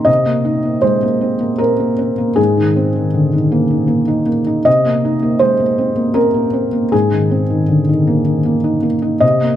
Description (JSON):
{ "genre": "neoclassical minimalist piano", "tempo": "79 BPM", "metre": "3/4", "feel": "rubato", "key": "unclear", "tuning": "A4 = 440 Hz", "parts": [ { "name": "felt-muted upright piano", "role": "solo", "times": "0.0-9.6 s", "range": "Ab2 to Eb5", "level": "-12 LUFS", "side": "equal", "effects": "none" } ], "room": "light reverb", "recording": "close, detailed microphones", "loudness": "-12 LUFS", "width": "side -11 dB against mid", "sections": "0.0-9.6 A section", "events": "none", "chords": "0.1 Cm7; 2.4 Abadd9; 4.7 Cm7; 6.9 Abadd9" }